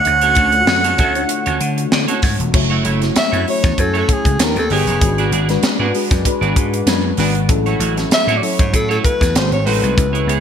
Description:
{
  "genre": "polished 1980s jazz-funk pop",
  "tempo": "97 BPM",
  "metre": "4/4",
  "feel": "swing 54% on 16ths",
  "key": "F# minor",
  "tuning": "A4 = 436 Hz",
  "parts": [
    { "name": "breathy alto saxophone", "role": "melody", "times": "0.0-10.3 s", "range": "G#4 to F#5", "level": "-18 LUFS", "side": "right 1 dB", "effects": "none" },
    { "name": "FM electric piano with soft pad layer", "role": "accompaniment", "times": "0.0-10.4 s", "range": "F#3 to C#5", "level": "-22 LUFS", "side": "left 4 dB", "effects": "lush chorus" },
    { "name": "chorused pulse-width pad", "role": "sustained chords", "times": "0.0-10.4 s", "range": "C#3 to G5", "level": "-27 LUFS", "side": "left 2 dB", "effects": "none" },
    { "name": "semi-hollow electric guitar", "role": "riff", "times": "0.1-10.4 s", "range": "A3 to E5", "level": "-23 LUFS", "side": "right 6 dB", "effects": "analog chorus" },
    { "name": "vintage slap bass", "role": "bass", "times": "0.1-10.4 s", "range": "E1 to D3", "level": "-19 LUFS", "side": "equal", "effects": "none" },
    { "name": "tight funk drum kit", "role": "drums", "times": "0.1-10.4 s", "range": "crash cymbal, hi-hat, kick drum, snare drum", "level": "-18 LUFS", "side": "equal", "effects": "gated reverb" }
  ],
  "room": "moderate plate reverb, RT60 1.4 s, small room ambience",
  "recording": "bright 1980s-style digital production",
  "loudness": "-13 LUFS",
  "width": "side -8 dB against mid",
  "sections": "0.0-2.5 A section; 2.5-10.4 B section",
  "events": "none",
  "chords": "0.0 Dmaj7; 2.5 F#m7; 4.4 D#7b13; 5.0 G#m7b5; 7.5 F#m7/A; 9.3 G#7b9"
}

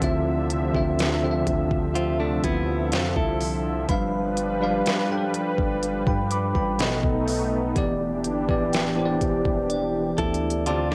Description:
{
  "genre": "contemporary R&B",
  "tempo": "62 BPM",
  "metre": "4/4",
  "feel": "straight",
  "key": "unclear",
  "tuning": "A4 = 442 Hz",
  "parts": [
    { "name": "bell-like tine electric piano", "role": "accompaniment", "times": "0.0-10.9 s", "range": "B2 to D6", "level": "-28 LUFS", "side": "equal", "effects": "cassette tape" },
    { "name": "warm analog pad", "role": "sustained chords", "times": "0.0-10.9 s", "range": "C3 to E5", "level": "-31 LUFS", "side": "equal", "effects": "chorus, sidechain pumping, cassette tape" },
    { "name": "direct-recorded clean electric guitar", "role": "arpeggios", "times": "0.0-3.9, 10.2-10.9 s", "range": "A3 to A4", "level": "-32 LUFS", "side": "equal", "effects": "subtle chorus, cassette tape, analog delay" },
    { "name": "long sustained 808-style bass", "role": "bass", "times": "0.0-10.9 s", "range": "D1 to G2", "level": "-33 LUFS", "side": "equal", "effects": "none" },
    { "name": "smooth R&B drum kit", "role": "drums", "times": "0.0-10.9 s", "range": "hi-hat, kick drum, snare drum", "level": "-29 LUFS", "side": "equal", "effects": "none" },
    { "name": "glassy synth bell", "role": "texture", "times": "3.9-10.9 s", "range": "D5 to B5", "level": "-40 LUFS", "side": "equal", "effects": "chorus, cassette tape, analog delay" }
  ],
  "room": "light reverb",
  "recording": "home recording on cassette",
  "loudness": "-24 LUFS",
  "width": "mono",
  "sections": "0.0-10.9 A section",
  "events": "tine electric piano fill 10.2-10.9; drum fill 10.7",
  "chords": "0.0 Dm9; 3.9 G7; 6.8 B7; 7.8 Em7"
}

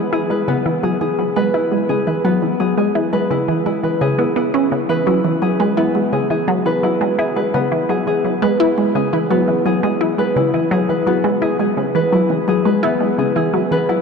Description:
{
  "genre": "ambient, sequencer-driven space music",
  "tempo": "85 BPM",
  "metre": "4/4",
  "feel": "straight",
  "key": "C# minor",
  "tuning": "A4 = 440 Hz",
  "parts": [
    { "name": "concert harp", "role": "arpeggios", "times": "0.0-14.0 s", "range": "B3 to B4", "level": "-18 LUFS", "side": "left 1 dB", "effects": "auto-pan, tape echo" },
    { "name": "resonant blip pluck", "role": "riff", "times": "0.0-14.0 s", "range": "C#3 to E4", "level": "-17 LUFS", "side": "equal", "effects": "phaser, tape echo" }
  ],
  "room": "wet huge ambient reverb, RT60 8.9 s",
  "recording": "dark, warm production",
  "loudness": "-15 LUFS",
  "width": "side -5 dB against mid",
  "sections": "0.0-14.0 A section",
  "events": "none",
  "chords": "0.0 C#m7 (rootless)"
}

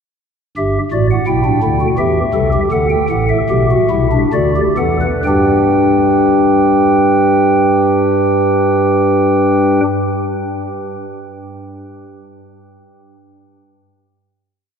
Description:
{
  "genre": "classical, baroque-style 3-part fugue for pipe organ",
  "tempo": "62-87 BPM",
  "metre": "3/4",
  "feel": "straight",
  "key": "G major",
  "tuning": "A4 = 440 Hz",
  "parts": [
    { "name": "pipe organ, stopped flute", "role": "solo", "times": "0.6-9.8 s", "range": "G1 to G5", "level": "-12 LUFS", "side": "equal", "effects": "none" }
  ],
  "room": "wet cathedral reverb, RT60 5.5 s",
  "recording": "minimal, uncompressed stereo recording",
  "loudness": "-11 LUFS",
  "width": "side -6 dB against mid",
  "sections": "0.6-5.2 exposition; 5.2-11.0 final chord",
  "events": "slowing down 0.6-6.7",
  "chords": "0.6 G; 2.0 C/E; 2.7 G; 4.3 D; 5.2 G"
}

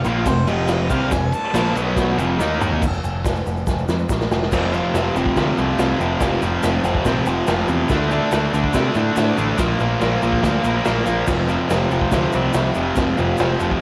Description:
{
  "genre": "garage rock duo or trio",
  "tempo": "142 BPM",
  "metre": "4/4",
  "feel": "straight",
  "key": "F major",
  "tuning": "A4 = 439 Hz",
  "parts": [
    { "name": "clear harmonica", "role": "melody", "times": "0.0-1.8 s", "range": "C5 to A5", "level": "-29 LUFS", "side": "equal", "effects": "overdrive, cassette tape" },
    { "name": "growling picked electric bass", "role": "bass", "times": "0.0-13.8 s", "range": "F1 to C3", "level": "-26 LUFS", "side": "equal", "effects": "overdrive, tube saturation" },
    { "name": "raw garage drum kit", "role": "drums", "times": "0.0-13.8 s", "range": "crash cymbal, hi-hat, kick drum, ride cymbal, snare drum, toms", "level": "-25 LUFS", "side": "equal", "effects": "vintage 12-bit sampler grit, cassette tape" },
    { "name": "egg shaker", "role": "percussion", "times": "0.0-13.7 s", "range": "none", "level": "-45 LUFS", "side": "equal", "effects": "none" },
    { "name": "fuzz guitar", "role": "riff", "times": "0.1-13.8 s", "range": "F2 to Eb4", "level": "-22 LUFS", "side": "equal", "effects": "distortion, cassette tape" }
  ],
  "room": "light reverb, studio ambience",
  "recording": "home recording on cassette",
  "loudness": "-19 LUFS",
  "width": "mono",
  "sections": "0.0-2.8 A section; 2.8-4.5 B section; 4.5-13.8 C section",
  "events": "harmonica solo 0.0-2.8; drum fill 2.4-2.8, 3.7-4.5",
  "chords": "0.0 F; 1.8 B5; 2.2 F5; 2.4 Eb5; 2.8 N.C.; 4.5 F5; 7.9 D5; 9.6 Bb5; 11.3 F5"
}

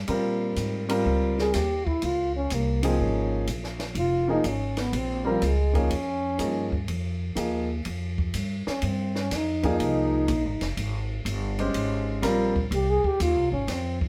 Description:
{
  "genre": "modal jazz",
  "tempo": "123 BPM",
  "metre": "4/4",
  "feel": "swing 68% on 8ths",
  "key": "F minor",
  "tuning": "A4 = 441 Hz",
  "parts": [
    { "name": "upright bass", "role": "bass", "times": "0.0-14.1 s", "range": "F1 to Bb2", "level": "-31 LUFS", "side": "equal", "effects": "none" },
    { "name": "warm grand piano", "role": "accompaniment", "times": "0.1-12.5 s", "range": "F3 to C5", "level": "-29 LUFS", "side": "equal", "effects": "none" },
    { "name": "compact cocktail drum kit", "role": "drums", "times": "0.1-14.1 s", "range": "hi-hat, kick drum, ride cymbal, snare drum", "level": "-36 LUFS", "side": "equal", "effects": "none" },
    { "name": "trombone with bucket mute", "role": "second line", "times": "1.4-14.1 s", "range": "Eb3 to Ab4", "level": "-29 LUFS", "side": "equal", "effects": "none" }
  ],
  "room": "moderate studio reverb, RT60 0.6 s",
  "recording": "heard from further back in the room",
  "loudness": "-26 LUFS",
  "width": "mono",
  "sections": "0.0-14.1 A section",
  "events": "trombone solo 0.0-14.1",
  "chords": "0.0 Fm9"
}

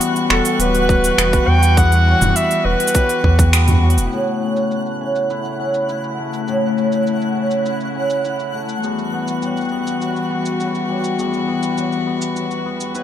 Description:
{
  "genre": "folktronica",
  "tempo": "102 BPM",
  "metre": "4/4",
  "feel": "straight",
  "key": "A mixolydian",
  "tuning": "A4 = 440 Hz",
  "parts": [
    { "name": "rich string quartet", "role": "sustained chords", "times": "0.0-13.0 s", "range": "C#3 to F#4", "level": "-24 LUFS", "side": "left 1 dB", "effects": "low-pass filter" },
    { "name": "cimbalom", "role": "arpeggios", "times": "0.0-13.0 s", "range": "E2 to F#4", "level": "-20 LUFS", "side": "left 2 dB", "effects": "vintage 12-bit sampler grit, low-pass filter, digital delay" },
    { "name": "organic electronic drum kit", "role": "drums", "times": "0.0-13.0 s", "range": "finger snaps, hi-hat, shaker, toms", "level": "-22 LUFS", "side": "right 2 dB", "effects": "overdrive, low-pass filter on hats, low-pass filter on snare, low-pass filter on perc, low-pass filter on toms, low-pass filter on room" },
    { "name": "twinkling granular texture", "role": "texture", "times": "0.0-13.0 s", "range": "F#5 to F#6", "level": "-29 LUFS", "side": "equal", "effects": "built-in reverb" },
    { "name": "breathy clarinet", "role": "melody", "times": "0.3-3.8, 12.9-13.0 s", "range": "A4 to G5", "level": "-18 LUFS", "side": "right 1 dB", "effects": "digital delay" },
    { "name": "round analog bass", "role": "bass", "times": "0.3-4.1 s", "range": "D1 to E2", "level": "-15 LUFS", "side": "right 1 dB", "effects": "tube saturation" },
    { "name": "electronic kick drum", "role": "drums", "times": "0.9-3.5 s", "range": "none", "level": "-17 LUFS", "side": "equal", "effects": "overdrive" }
  ],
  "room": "light reverb, digital ambience",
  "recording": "none",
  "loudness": "-15 LUFS",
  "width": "side -10 dB against mid",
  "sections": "0.0-4.1 A section; 4.1-13.0 B section",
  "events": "band accent 3.5; filter sweep on string quartet 4.1-13.0",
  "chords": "0.0 Emadd9; 4.1 A; 8.8 Emadd9"
}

